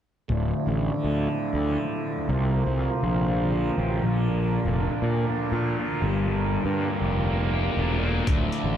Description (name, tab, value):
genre	psychedelic rock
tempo	120 BPM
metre	4/4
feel	straight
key	D minor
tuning	A4 = 440 Hz
part	pedal harmonium	sustained chords	0.3-8.8 s	F3 to Bb4	-32 LUFS	right 7 dB	low-pass filter
part	thick fuzz guitar	riff	0.3-8.8 s	D2 to C5	-27 LUFS	left 1 dB	distortion, phaser, low-pass filter
part	fuzz picked electric bass	bass	0.3-8.8 s	D1 to Bb2	-25 LUFS	equal	overdrive
part	tanpura	drone	0.3-8.8 s	D2 to D3	-36 LUFS	equal	stereo widening
part	boom bap sampler-style drum kit	drums	8.3-8.6 s	hi-hat, kick drum	-24 LUFS	equal	none
room	light reverb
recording	none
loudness	-23 LUFS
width	side -10 dB against mid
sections	0.3-8.8 A section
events	filter sweep 0.3-8.8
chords	0.3 Dmadd9; 2.3 C7sus4; 4.0 Bb; 6.0 Gm7; 8.3 Dmadd9